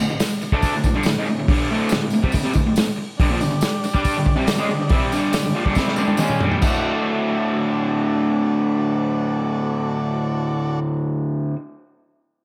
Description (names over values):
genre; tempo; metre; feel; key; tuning
garage rock duo or trio; 140 BPM; 4/4; straight; D mixolydian; A4 = 440 Hz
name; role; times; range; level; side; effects
raw garage guitar; riff; 0.0-11.6 s; D2 to G4; -23 LUFS; equal; overdrive
vintage drum kit; drums; 0.2-6.7 s; crash cymbal, hi-hat, kick drum, snare drum, toms; -23 LUFS; equal; none
tambourine; percussion; 0.2-6.8 s; none; -38 LUFS; equal; none
overdriven combo organ; sustained chords; 3.2-10.8 s; D4 to A5; -31 LUFS; equal; none
room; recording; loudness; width
light reverb, small room ambience; none; -20 LUFS; mono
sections
0.0-6.6 A section; 6.6-10.0 B section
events
drum fill 5.8-6.6; transistor combo organ fill 5.8-6.6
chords
0.0 D5; 3.2 G5; 6.6 D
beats
0.20 0.63 1.06 | 1.49 1.92 2.34 2.77 | 3.20 3.63 4.05 4.48 | 4.91 5.34 5.77 6.19 | 6.62 7.05 7.48 7.90 | 8.33 8.76 9.19 9.61